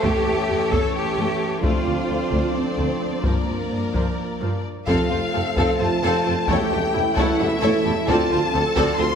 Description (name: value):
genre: cinematic, epic orchestral film score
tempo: 262 BPM (eighths)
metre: 7/8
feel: straight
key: unclear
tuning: A4 = 440 Hz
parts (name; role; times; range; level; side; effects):
- clear symphonic violin section; melody; 0.0-9.2 s; C#5 to C6; -28 LUFS; left 5 dB; none
- rich studio violin section; second line; 0.0-9.1 s; C4 to F5; -28 LUFS; left 3 dB; none
- rich symphonic viola section; accompaniment; 0.0-9.1 s; F3 to A4; -26 LUFS; equal; none
- bright trombone section; sustained chords; 0.0-9.2 s; D3 to C4; -29 LUFS; right 4 dB; none
- mellow French horn section; sustained chords; 0.0-9.2 s; C4 to C5; -29 LUFS; left 2 dB; none
- rich studio double bass section; bass; 0.0-9.1 s; D2 to G2; -28 LUFS; right 2 dB; none
- rich symphonic cello section; bass; 0.0-9.2 s; Bb3 to A4; -27 LUFS; right 2 dB; none
- taiko ensemble; drums; 0.0-9.2 s; none; -27 LUFS; left 1 dB; none
- warm tuba; bass; 4.9-9.1 s; E1 to D2; -28 LUFS; right 2 dB; none
room: wet scoring stage reverb, RT60 1.9 s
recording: none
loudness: -19 LUFS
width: side -7 dB against mid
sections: 0.0-4.9 A section; 4.9-9.2 B section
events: none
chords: 0.0 A7/E; 1.6 Dm7; 3.2 Gm7; 4.9 F; 6.5 A7/E; 8.1 Dm7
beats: | 0.03 0.26 0.49 0.72 0.94 1.17 1.40 | 1.63 1.86 2.09 2.32 2.55 2.78 3.01 | 3.24 3.48 3.71 3.94 4.18 4.41 4.64 | 4.88 5.11 5.34 5.57 5.80 6.03 6.26 | 6.49 6.71 6.94 7.17 7.40 7.62 7.85 | 8.09 8.31 8.54 8.77 8.99